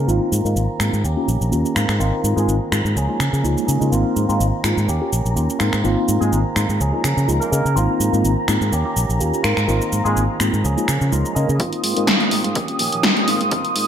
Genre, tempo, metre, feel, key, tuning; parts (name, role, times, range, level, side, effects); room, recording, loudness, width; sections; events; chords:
filtered disco house; 125 BPM; 4/4; swing 54% on 16ths; Ab major; A4 = 440 Hz
clear horn section; melody; 0.0-2.5, 6.2-10.2 s; Ab3 to Bb4; -30 LUFS; right 1 dB; vintage 12-bit sampler grit, sidechain pumping, low-pass filter, ping-pong delay
muted studio violin section; sustained chords; 0.0-13.9 s; Bb5 to Eb6; -28 LUFS; equal; sidechain pumping, low-pass filter
direct-recorded clean electric guitar; riff; 0.0-13.9 s; Eb3 to Ab4; -27 LUFS; right 4 dB; vintage 12-bit sampler grit, sidechain pumping, low-pass filter
fingered electric bass; bass; 0.0-13.9 s; Ab1 to Db3; -20 LUFS; equal; sidechain pumping, high-pass filter, low-pass filter
tine electric piano; accompaniment; 0.1-13.9 s; Ab3 to Bb4; -23 LUFS; left 1 dB; fast stereo tremolo, phaser, vintage 12-bit sampler grit, sidechain pumping, low-pass filter
punchy analog drum machine; drums; 0.1-13.9 s; finger snaps, hi-hat, shaker, snare drum; -22 LUFS; equal; overdrive, sidechain pumping on hats, sidechain pumping on perc, gated reverb
electronic kick drum; drums; 11.6-13.6 s; -28 LUFS; equal; overdrive, high-pass filter on kick
moderate plate reverb, RT60 2.3 s; bright 1980s-style digital production; -16 LUFS; side -9 dB against mid
0.0-11.6 A section; 11.6-13.9 B section
filter sweep 0.0-11.6, 11.6-13.9; build-up 11.6-13.9
0.1 Ab69; 1.0 Eb7; 1.8 Ab69; 3.0 Db6; 3.9 Ab69; 4.9 Eb7; 5.6 Ab69; 6.8 Db6; 7.8 Ab69; 8.7 Eb7; 9.4 Ab69; 10.6 Db6; 11.6 Ab69; 12.6 Eb7; 13.3 Ab69